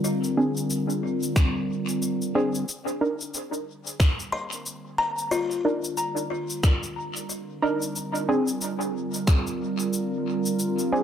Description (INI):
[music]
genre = ambient dub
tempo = 91 BPM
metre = 4/4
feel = swing 59% on 16ths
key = unclear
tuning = A4 = 441 Hz
[part]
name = warbly tape-like pad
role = sustained chords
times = 0.0-11.0 s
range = D3 to Bb4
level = -29 LUFS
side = right 1 dB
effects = chorus, built-in reverb
[part]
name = buzzing kalimba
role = arpeggios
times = 0.0-8.2 s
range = F4 to C6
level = -30 LUFS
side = left 3 dB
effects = tape echo
[part]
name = electronic cabasa and finger snaps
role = drums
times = 0.0-10.9 s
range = none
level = -32 LUFS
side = left 2 dB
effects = dub echo
[part]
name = filtered dub chord stab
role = stabs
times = 0.4-11.0 s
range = C4 to Bb4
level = -26 LUFS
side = right 1 dB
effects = chorus, dub echo
[part]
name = electronic kick drum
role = drums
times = 1.4-9.4 s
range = none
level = -20 LUFS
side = equal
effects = none
[sound]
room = moderate spring reverb, RT60 1.6 s, digital ambience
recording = none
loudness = -24 LUFS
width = side -9 dB against mid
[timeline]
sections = 0.0-2.7 A section; 2.7-11.0 A section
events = fade-in on ambient pad 2.7-11.0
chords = 0.0 Bb7; 2.7 Cm7; 8.0 Bb7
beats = | 0.04 0.70 1.36 2.02 | 2.68 3.34 4.00 4.66 | 5.32 5.98 6.64 7.30 | 7.96 8.62 9.28 9.93 | 10.59